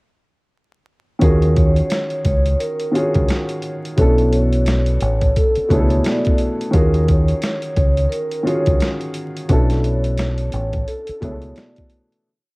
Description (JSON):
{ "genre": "hip hop, boom-bap hip-hop", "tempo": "87 BPM", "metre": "4/4", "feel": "swing 60% on 16ths", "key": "unclear", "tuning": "A4 = 440 Hz", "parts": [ { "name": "vibraphone with soft mallets", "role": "melody", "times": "1.2-11.9 s", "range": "A4 to D5", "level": "-23 LUFS", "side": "equal", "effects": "high-pass filter, low-pass filter, cassette tape" }, { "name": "dark upright piano", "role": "accompaniment", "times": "1.2-12.3 s", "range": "B2 to A4", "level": "-22 LUFS", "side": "equal", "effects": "high-pass filter, low-pass filter, cassette tape" }, { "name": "deep dub fingered electric bass", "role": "bass", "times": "1.2-11.5 s", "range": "A1 to Eb2", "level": "-18 LUFS", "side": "equal", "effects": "none" }, { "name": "boom bap sampler-style drum kit", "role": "drums", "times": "1.2-12.2 s", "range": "hi-hat, kick drum, rim click, snare drum", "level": "-19 LUFS", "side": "equal", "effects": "cassette tape" } ], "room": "little or no reverb", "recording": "home recording on cassette, vinyl crackle", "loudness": "-15 LUFS", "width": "side -26 dB against mid", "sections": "1.2-12.3 verse", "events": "fade-out 9.5-12.3", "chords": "1.2 Ebm11; 4.0 Bm11; 6.7 Ebm11; 9.5 Bm11" }